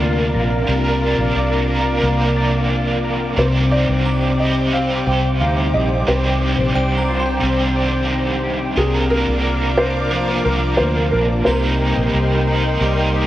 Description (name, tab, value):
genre	dream pop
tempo	89 BPM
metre	4/4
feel	straight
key	C minor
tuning	A4 = 440 Hz
part	biting overdriven guitar	accompaniment	0.0-13.3 s	C3 to Bb4	-23 LUFS	right 2 dB	tremolo, analog chorus
part	string machine, cellos	sustained chords	0.0-13.3 s	Bb4 to D6	-22 LUFS	equal	ensemble chorus
part	electric guitar at the edge of break-up	arpeggios	0.0-13.3 s	C3 to D5	-22 LUFS	left 2 dB	lush chorus, digital delay
part	vintage muted fingered electric bass	bass	0.0-13.3 s	Bb1 to D2	-20 LUFS	equal	none
part	felt-muted upright piano	melody	3.4-13.3 s	Ab4 to G5	-22 LUFS	equal	digital delay
part	synth chime	texture	4.1-13.3 s	G5 to D6	-32 LUFS	right 3 dB	ensemble chorus, phaser, digital delay
room	moderate lush hall reverb, RT60 2.3 s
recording	worn, warbling old tape, cassette tape, warbly pitch drift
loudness	-15 LUFS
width	side -14 dB against mid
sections	0.0-13.3 A section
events	none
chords	0.0 Bb; 3.4 Cmadd9; 8.8 Bb/C; 11.5 Cm7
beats	0.01 | 0.68 1.36 2.03 2.71 | 3.38 4.05 4.73 5.40 | 6.08 6.75 7.42 8.10 | 8.77 9.45 10.12 10.79 | 11.47 12.14 12.82